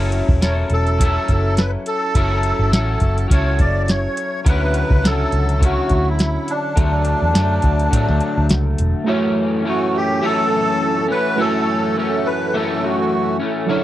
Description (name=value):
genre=indie pop, bedroom pop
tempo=104 BPM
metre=4/4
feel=swing 55% on 16ths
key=unclear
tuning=A4 = 440 Hz
part: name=electric guitar at the edge of break-up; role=accompaniment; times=0.0-13.8 s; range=F#2 to A4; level=-22 LUFS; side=left 3 dB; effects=analog chorus, warbly pitch drift
part: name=vintage muted picked electric bass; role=bass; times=0.0-8.9 s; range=E1 to A2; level=-18 LUFS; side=equal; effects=none
part: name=soft vintage rhythm box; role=drums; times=0.1-8.9 s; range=hi-hat, kick drum, snare drum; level=-17 LUFS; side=equal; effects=overdrive
part: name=melodica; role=melody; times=0.4-13.4 s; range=D4 to D5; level=-21 LUFS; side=right 1 dB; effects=ensemble chorus, slapback echo
part: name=soft electric-piano-like synth keys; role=accompaniment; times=9.0-13.8 s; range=F#3 to C#5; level=-23 LUFS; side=right 5 dB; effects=chorus, cassette tape
part: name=shimmering ambient pad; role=sustained chords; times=10.2-13.8 s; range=A4 to C#6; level=-27 LUFS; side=right 2 dB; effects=chorus, built-in reverb, phaser
room=light reverb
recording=dry, close 1970s-style studio recording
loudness=-15 LUFS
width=side -14 dB against mid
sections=0.0-9.1 A section; 9.1-13.8 B section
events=none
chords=0.0 F#m7; 4.5 Dmaj9; 6.8 D; 9.1 F#m7